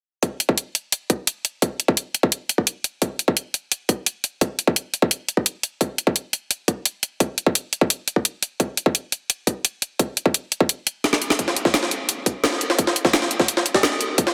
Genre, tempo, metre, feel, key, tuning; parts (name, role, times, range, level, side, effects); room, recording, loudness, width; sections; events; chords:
drum and bass; 172 BPM; 4/4; straight
drum and bass drum kit; drums; 0.2-14.2 s; hi-hat, snare drum; -22 LUFS; equal; overdrive
electronic kick drum; drums; 0.2-14.2 s; -22 LUFS; equal; high-pass filter on kick, high-pass filter on room
jungle sampler-style drum kit; drums; 11.4-14.3 s; hi-hat, snare drum; -25 LUFS; equal; overdrive, high-pass filter on hats, high-pass filter on snare
moderate lush hall reverb, RT60 2.2 s; dense, heavily limited modern master; -22 LUFS; mono
0.2-14.3 A section
kick drops out 10.7-11.4; drum fill 11.0-11.4